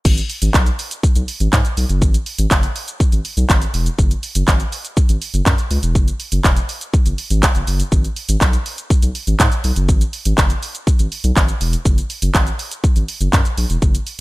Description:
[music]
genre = dance-pop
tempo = 122 BPM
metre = 4/4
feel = straight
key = G# minor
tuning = A4 = 444 Hz
[part]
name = saturated sub bass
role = bass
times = 0.1-14.0 s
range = E1 to G#2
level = -18 LUFS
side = equal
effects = sidechain pumping
[part]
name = house drum kit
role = drums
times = 0.1-14.2 s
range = crash cymbal, handclaps, hi-hat, kick drum, shaker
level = -16 LUFS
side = equal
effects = none
[sound]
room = little or no reverb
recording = bright 1980s-style digital production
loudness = -15 LUFS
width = side -20 dB against mid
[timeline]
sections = 0.1-14.2 A section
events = none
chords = none

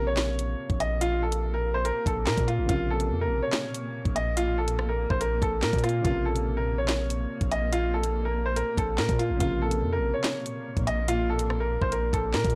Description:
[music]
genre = hip hop, drill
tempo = 143 BPM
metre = 4/4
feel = half-time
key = Bb harmonic minor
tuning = A4 = 440 Hz
[part]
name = bright upright piano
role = melody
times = 0.0-12.5 s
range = F4 to Eb5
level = -31 LUFS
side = equal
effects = low-pass filter, analog delay
[part]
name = dark grand piano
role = accompaniment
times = 0.0-12.6 s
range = C3 to Bb3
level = -39 LUFS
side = equal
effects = low-pass filter
[part]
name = granular cloud pad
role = sustained chords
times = 0.5-12.6 s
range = Bb2 to Bb3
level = -40 LUFS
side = equal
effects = built-in reverb
[part]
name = long sustained 808-style bass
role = bass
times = 0.0-12.6 s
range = A1 to Bb2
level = -31 LUFS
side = equal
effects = none
[part]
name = drill drum kit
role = drums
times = 0.2-12.5 s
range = handclaps, hi-hat, kick drum, rim click, snare drum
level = -32 LUFS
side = equal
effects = none
[sound]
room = digital ambience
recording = dry, gritty hardware recording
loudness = -27 LUFS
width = mono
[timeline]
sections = 0.0-12.6 A section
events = none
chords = 0.0 Bbmadd9

